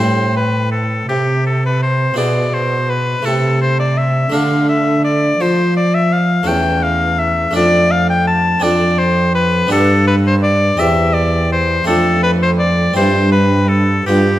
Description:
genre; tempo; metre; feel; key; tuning
classical, baroque-style sonata movement with continuo; 55 BPM (dotted quarters); 6/8; straight; A minor, C major from 8.6 s; A4 = 442 Hz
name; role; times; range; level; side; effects
bright oboe; melody; 0.0-14.4 s; G4 to A5; -16 LUFS; left 2 dB; none
harpsichord; accompaniment; 0.0-14.4 s; E2 to A4; -19 LUFS; equal; none
warm cello; bass; 0.0-14.4 s; E2 to F3; -16 LUFS; right 1 dB; none
room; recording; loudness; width
wet recital hall reverb, RT60 1.7 s; none; -12 LUFS; side -14 dB against mid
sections
0.0-14.4 A section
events
none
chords
0.0 Am; 2.2 E/B; 3.3 Am/C; 4.3 Dm; 6.5 A/E; 7.6 Dm/F; 8.6 Dm7/F; 9.7 G; 10.8 C/E; 11.9 Dm7/F; 13.0 C/G

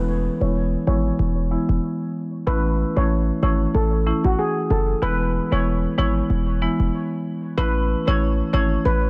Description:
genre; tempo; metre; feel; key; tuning
dancehall; 94 BPM; 4/4; swing 56% on 16ths; E major; A4 = 440 Hz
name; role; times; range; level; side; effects
steel pan; melody; 0.0-9.0 s; F#4 to C#5; -28 LUFS; equal; low-pass filter, tape echo
marimba with medium hard mallets; accompaniment; 0.0-8.8 s; E3 to E4; -26 LUFS; equal; low-pass filter
hard-hitting 808-style bass; bass; 0.0-9.1 s; E1 to A1; -24 LUFS; equal; none
room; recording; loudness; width
little or no reverb; dense, heavily limited modern master; -21 LUFS; mono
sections
0.0-9.1 A section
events
filter sweep 0.0-9.1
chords
0.0 E; 2.5 A; 5.0 E; 7.6 A

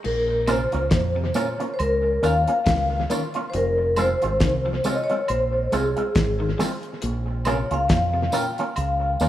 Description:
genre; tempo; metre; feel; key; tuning
roots reggae; 69 BPM; 4/4; swing 57% on 16ths; unclear; A4 = 440 Hz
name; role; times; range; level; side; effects
electric guitar at the edge of break-up; arpeggios; 0.0-8.5 s; Bb2 to F3; -34 LUFS; left 5 dB; tremolo
damped 70s drum kit; drums; 0.0-9.3 s; crash cymbal, hi-hat, kick drum, snare drum; -25 LUFS; equal; analog delay
vibraphone with medium mallets; melody; 0.1-9.3 s; Ab4 to G5; -24 LUFS; left 1 dB; dub echo
deep dub fingered electric bass; bass; 0.1-9.3 s; F1 to F2; -25 LUFS; right 1 dB; none
electric guitar with an envelope filter; accompaniment; 0.5-9.3 s; Ab3 to F4; -28 LUFS; right 2 dB; spring reverb, dub echo
tambourine and woodblock; percussion; 0.5-9.3 s; none; -34 LUFS; right 3 dB; none
room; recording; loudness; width
light reverb, small room ambience; rough home demo mix, studio ambience; -20 LUFS; side -12 dB against mid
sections
0.0-9.3 A section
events
none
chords
0.0 Bbm; 3.5 Fm; 7.0 Bbm

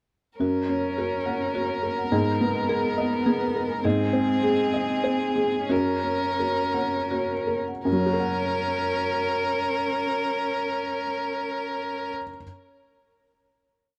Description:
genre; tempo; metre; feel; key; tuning
neoclassical piano and strings; 78-106 BPM; 3/4; rubato; F# major; A4 = 440 Hz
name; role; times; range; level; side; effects
rich violin; melody; 0.4-12.1 s; G#4 to A#4; -30 LUFS; equal; none
warm cello; second line; 0.4-12.1 s; B3 to C#4; -32 LUFS; equal; none
felt-muted upright piano; accompaniment; 0.4-12.4 s; F#2 to F#5; -29 LUFS; equal; none
marimba with hard mallets; arpeggios; 0.4-7.8 s; F#4 to G#5; -35 LUFS; equal; tape echo
room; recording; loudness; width
light reverb; dark, warm production; -25 LUFS; mono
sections
0.4-7.9 theme; 7.9-12.4 final chord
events
slowing down 3.0-7.9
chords
0.4 F#; 2.1 G#madd9; 3.8 G#; 5.7 F#

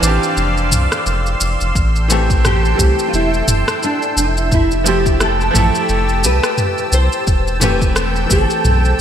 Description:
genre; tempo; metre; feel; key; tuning
sunset chillout; 87 BPM; 4/4; swing 58% on 16ths; A minor; A4 = 440 Hz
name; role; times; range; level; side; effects
nylon-string guitar; melody; 0.0-9.0 s; D4 to C5; -20 LUFS; equal; ensemble chorus, digital delay
bright baby grand piano; accompaniment; 0.0-9.0 s; E3 to C5; -21 LUFS; moving between left 4 dB and right 5 dB; auto-pan, digital delay
lush unison pad; sustained chords; 0.0-9.0 s; C4 to E6; -21 LUFS; equal; chorus
round analog bass; bass; 0.0-8.9 s; E1 to C2; -17 LUFS; equal; none
deep house drum kit; drums; 0.0-9.0 s; rim click, shaker, toms; -20 LUFS; equal; gated reverb
electronic kick drum; drums; 1.8-8.5 s; none; -17 LUFS; equal; none
room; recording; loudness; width
moderate plate reverb, RT60 3.2 s; bright 1980s-style digital production; -13 LUFS; side -9 dB against mid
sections
0.0-9.0 A section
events
none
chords
0.0 Dm9/F; 1.8 Am7; 4.5 Fmaj9; 7.3 C6/E

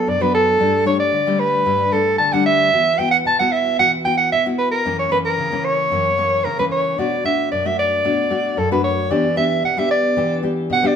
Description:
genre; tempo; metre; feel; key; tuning
samba; 113 BPM; 4/4; straight; B minor; A4 = 440 Hz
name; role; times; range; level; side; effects
warm soprano saxophone; melody; 0.0-11.0 s; A4 to A5; -17 LUFS; right 2 dB; none
nylon-string guitar; accompaniment; 0.0-11.0 s; F#2 to G4; -21 LUFS; left 4 dB; none
room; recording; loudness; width
wet stone room reverb, RT60 1.0 s; band playing live in one room; -15 LUFS; side -7 dB against mid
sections
0.0-11.0 A section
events
none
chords
0.0 Bm; 0.6 Gsus2; 2.7 Esus2; 4.9 F#7; 7.0 Bm7; 9.1 Em7

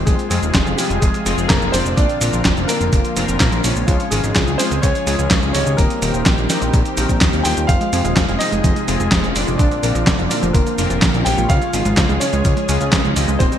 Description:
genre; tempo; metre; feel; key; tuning
italo disco; 126 BPM; 4/4; straight; unclear; A4 = 440 Hz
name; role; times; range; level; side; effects
lush unison pad; sustained chords; 0.0-13.6 s; C3 to Ab4; -24 LUFS; equal; chorus
chorused polysynth; stabs; 0.0-13.6 s; Bb2 to Eb5; -25 LUFS; left 4 dB; none
fat analog bass; bass; 0.0-13.5 s; Eb1 to F2; -21 LUFS; equal; none
warm grand piano; melody; 0.1-13.6 s; F3 to G5; -23 LUFS; equal; ping-pong delay
dusty soul sampler-style drum kit; drums; 0.1-13.6 s; cabasa, handclaps, hi-hat, snare drum; -20 LUFS; equal; gated reverb
electronic kick drum; drums; 0.1-13.5 s; none; -18 LUFS; equal; none
wide unison pluck; arpeggios; 7.7-13.6 s; D3 to Db4; -24 LUFS; right 4 dB; ping-pong delay
room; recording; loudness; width
light reverb; bright 1980s-style digital production; -14 LUFS; side -9 dB against mid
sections
0.0-13.6 A section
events
none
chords
0.1 Fm; 2.0 Bbadd9; 3.9 Db; 5.8 Eb6; 7.7 Fm; 9.6 Bbadd9; 11.5 Db

